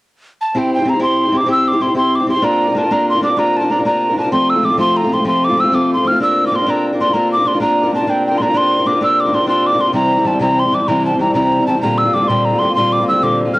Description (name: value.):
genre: celtic folk, Celtic slide.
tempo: 128 BPM (dotted quarters).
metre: 12/8.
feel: straight.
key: unclear.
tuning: A4 = 439 Hz.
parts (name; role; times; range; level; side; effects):
mellow hollow wooden whistle; melody; 0.4-13.6 s; G5 to F6; -15 LUFS; equal; cassette tape, plate reverb, tape echo.
fingerpicked steel-string acoustic guitar; accompaniment; 0.5-13.6 s; Bb2 to C5; -16 LUFS; left 1 dB; none.
pedal harmonium; drone; 0.5-13.6 s; C3 to C4; -26 LUFS; right 1 dB; stereo widening, plate reverb.
room: moderate small room reverb, RT60 0.5 s.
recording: home recording on cassette.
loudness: -12 LUFS.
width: side -20 dB against mid.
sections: 0.5-13.6 A section.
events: none.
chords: 0.0 N.C.; 0.5 C; 2.4 Bb; 4.3 F; 6.2 Bb; 10.0 C; 11.8 Bb6.